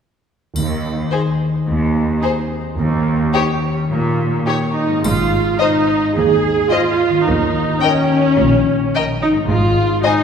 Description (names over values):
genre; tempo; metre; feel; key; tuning
cinematic, playful, whimsical film cue; 108 BPM; 4/4; straight; Ab major; A4 = 440 Hz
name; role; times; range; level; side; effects
concert harp; arpeggios; 0.6-10.2 s; Ab2 to Eb5; -22 LUFS; left 4 dB; none
clear chamber cello section; bass; 0.6-9.9 s; Eb2 to Bb2; -22 LUFS; right 2 dB; none
warm chamber double bass section; bass; 0.6-9.9 s; Ab1 to Eb2; -22 LUFS; right 2 dB; none
triangle; percussion; 0.6-1.6, 5.0-6.1 s; none; -33 LUFS; left 3 dB; none
rich chamber violin section; melody; 1.1-10.1 s; C5 to Ab5; -25 LUFS; left 5 dB; none
warm chamber violin section; second line; 1.1-10.1 s; G4 to Eb5; -24 LUFS; left 4 dB; none
rich chamber viola section; accompaniment; 1.1-10.2 s; Db4 to Ab4; -16 LUFS; right 1 dB; none
room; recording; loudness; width
wet concert hall reverb, RT60 2.5 s; heard from further back in the room; -14 LUFS; side -7 dB against mid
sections
0.6-5.0 A section; 5.0-10.2 B section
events
none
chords
0.6 Ab/Eb (rootless); 2.8 Eb7; 5.0 Ab; 7.3 Eb7; 9.5 Ab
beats
| 0.56 1.12 1.68 2.23 | 2.79 3.34 3.90 4.47 | 5.04 5.60 6.16 6.72 | 7.27 7.83 8.39 8.95 | 9.50 10.05